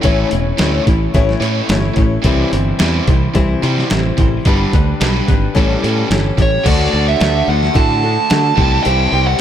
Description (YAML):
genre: folk rock and heartland rock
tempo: 109 BPM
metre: 4/4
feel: straight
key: unclear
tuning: A4 = 439 Hz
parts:
  - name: picked old ladder-braced acoustic guitar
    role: accompaniment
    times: 0.0-9.4 s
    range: A2 to C#5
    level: -19 LUFS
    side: left 5 dB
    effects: dub echo
  - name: biting overdriven guitar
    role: riff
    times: 0.0-9.4 s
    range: G2 to G4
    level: -20 LUFS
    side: right 2 dB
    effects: dub echo
  - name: fingered electric bass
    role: bass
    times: 0.0-9.3 s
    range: E1 to D3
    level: -17 LUFS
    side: equal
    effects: none
  - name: dusty soul sampler-style drum kit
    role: drums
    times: 0.0-9.4 s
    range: crash cymbal, hi-hat, kick drum, snare drum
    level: -17 LUFS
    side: equal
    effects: dub echo
  - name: dark smooth lead guitar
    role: melody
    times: 6.4-9.4 s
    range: C#5 to A5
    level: -16 LUFS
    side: right 3 dB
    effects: overdrive, dub echo
room: digital ambience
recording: echo-heavy mix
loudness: -12 LUFS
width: side -10 dB against mid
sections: 0.0-6.7 A section; 6.7-9.4 B section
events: none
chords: 0.0 A; 2.2 C; 4.5 G; 5.6 A7; 6.7 D; 8.6 C